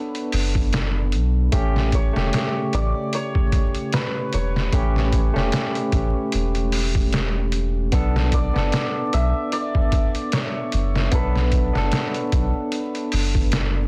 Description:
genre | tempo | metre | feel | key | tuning
trip hop | 75 BPM | 4/4 | swing 56% on 16ths | B minor | A4 = 442 Hz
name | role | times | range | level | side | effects
santur | melody | 0.0-13.9 s | B4 to E5 | -33 LUFS | equal | vintage 12-bit sampler grit, tape echo
barky tine electric piano | accompaniment | 0.0-13.9 s | C#3 to A4 | -28 LUFS | equal | harmonic tremolo, tape echo
trip hop sampler-style drum kit | drums | 0.1-13.7 s | hi-hat, kick drum, snare drum | -25 LUFS | equal | studio reverb
soft dub sub bass | bass | 0.3-13.9 s | E1 to B1 | -24 LUFS | equal | none
room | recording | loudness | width
little or no reverb | dense, heavily limited modern master, vinyl crackle | -22 LUFS | mono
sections
0.0-13.9 A section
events
none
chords
0.0 Bm7; 1.5 A7; 7.9 Bm7

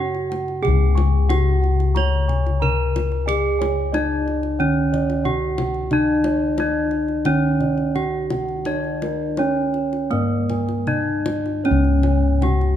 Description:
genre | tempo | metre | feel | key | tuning
Javanese gamelan | 77-91 BPM | 4/4 | straight | C# pelog barang | A4 = 440 Hz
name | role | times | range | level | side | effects
gamelan-type bronze metallophone | melody | 0.0-12.8 s | A#3+20c to C#5 | -22 LUFS | right 1 dB | none
gamelan-type bossed gongs | arpeggios | 0.0-12.8 s | A#4+20c to C#6 | -32 LUFS | left 2 dB | none
gamelan-type bronze metallophone | arpeggios | 0.0-12.8 s | A#4+20c to C#6 | -29 LUFS | right 8 dB | none
gamelan-type bossed gongs | bass | 0.0-12.8 s | C#2 to G#4-40c | -21 LUFS | left 2 dB | none
kendang | percussion | 0.1-12.7 s | none | -31 LUFS | left 2 dB | none
room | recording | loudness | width
moderate recital hall reverb, RT60 1.7 s | dark, warm production | -18 LUFS | side -10 dB against mid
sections
0.6-11.6 A section; 11.6-12.8 B section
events
none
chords
none

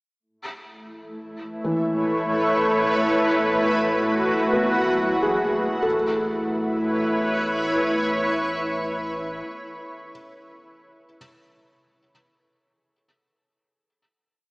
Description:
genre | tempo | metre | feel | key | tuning
ambient | 64 BPM | 3/4 | straight | A major | A4 = 440 Hz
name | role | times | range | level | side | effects
granular cloud pad | sustained chords | 1.1-9.4 s | A3 to C#5 | -22 LUFS | equal | built-in reverb
round analog bass | bass | 0.2-9.4 s | A1 | -45 LUFS | equal | none
analog drone | drone | 1.2-9.5 s | A3 to E4 | -28 LUFS | equal | chorus
felt-muted upright piano | arpeggios | 1.6-11.2 s | E3 to A4 | -28 LUFS | equal | tape echo
room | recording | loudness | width
wet lush hall reverb, RT60 2.8 s | small speaker sound | -20 LUFS | side -29 dB against mid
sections
0.2-5.9 A section; 5.9-8.7 final chord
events
none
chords
0.2 Aadd9; 3.0 Esus2/A; 5.9 Aadd9

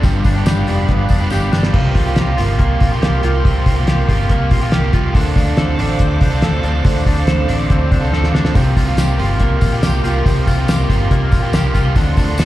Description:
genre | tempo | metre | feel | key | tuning
jangly indie pop | 141 BPM | 4/4 | straight | unclear | A4 = 440 Hz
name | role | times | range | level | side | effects
overdriven electric guitar | accompaniment | 0.0-12.4 s | G2 to A4 | -22 LUFS | right 6 dB | slapback echo
hollow soft pad | sustained chords | 0.0-12.4 s | F4 to D6 | -25 LUFS | right 2 dB | chorus
twelve-string electric guitar | arpeggios | 0.0-12.4 s | G2 to A4 | -21 LUFS | left 6 dB | vibrato effect
vintage muted fingered electric bass | bass | 0.0-12.4 s | F1 to D2 | -17 LUFS | equal | none
cloth-damped thuddy drum kit | drums | 0.0-12.4 s | crash cymbal, hi-hat, kick drum, snare drum | -16 LUFS | equal | none
tambourine | percussion | 0.0-1.6, 8.6-12.4 s | none | -35 LUFS | left 1 dB | none
room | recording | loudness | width
small room ambience | live gig heard through the venue's PA, recital hall reverb | -13 LUFS | side -15 dB against mid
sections
0.0-1.7 A section; 1.7-12.4 A section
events
drum fill 1.3-1.7, 8.1-8.6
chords
0.0 G7; 1.7 C7sus4; 5.2 Dm7; 8.6 C7sus4

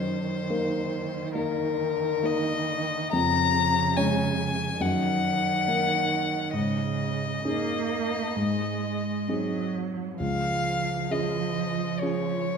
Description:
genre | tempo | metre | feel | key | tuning
classical, slow romantic movement for piano trio | 64-73 BPM | 4/4 | rubato | Db major | A4 = 440 Hz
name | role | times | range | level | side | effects
warm violin | melody | 0.0-12.6 s | Bb4 to Bb5 | -28 LUFS | left 6 dB | none
warm cello | second line | 0.0-12.6 s | Db3 to Bb3 | -30 LUFS | right 6 dB | none
warm concert grand piano | accompaniment | 0.0-12.6 s | Db2 to Db5 | -29 LUFS | left 1 dB | none
room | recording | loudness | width
wet recital hall reverb, RT60 1.6 s | none | -24 LUFS | side -6 dB against mid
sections
0.0-12.6 A section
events
none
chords
0.0 Ebm/Gb; 3.1 Db/F; 4.8 Ebm/Gb; 6.5 Absus4; 8.4 Ab; 10.2 Db

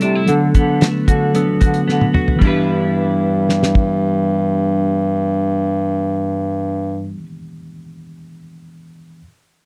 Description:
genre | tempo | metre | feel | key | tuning
indie pop, bedroom pop | 112 BPM | 4/4 | straight | G major | A4 = 438 Hz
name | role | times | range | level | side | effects
clean electric guitar | accompaniment | 0.0-7.3 s | C3 to B4 | -23 LUFS | equal | analog chorus, vibrato effect
tine electric piano | accompaniment | 0.0-9.2 s | E3 to A4 | -24 LUFS | equal | cassette tape
warm bass clarinet | bass | 0.0-7.2 s | G2 to D3 | -22 LUFS | equal | none
cloth-damped thuddy drum kit | drums | 0.0-3.9 s | crash cymbal, hi-hat, kick drum, snare drum, toms | -18 LUFS | equal | none
room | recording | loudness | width
studio reverb | dry, close 1970s-style studio recording | -17 LUFS | mono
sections
0.0-2.4 A section; 2.4-6.7 B section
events
drum fill 1.9-2.4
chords
0.3 D6; 2.4 G6

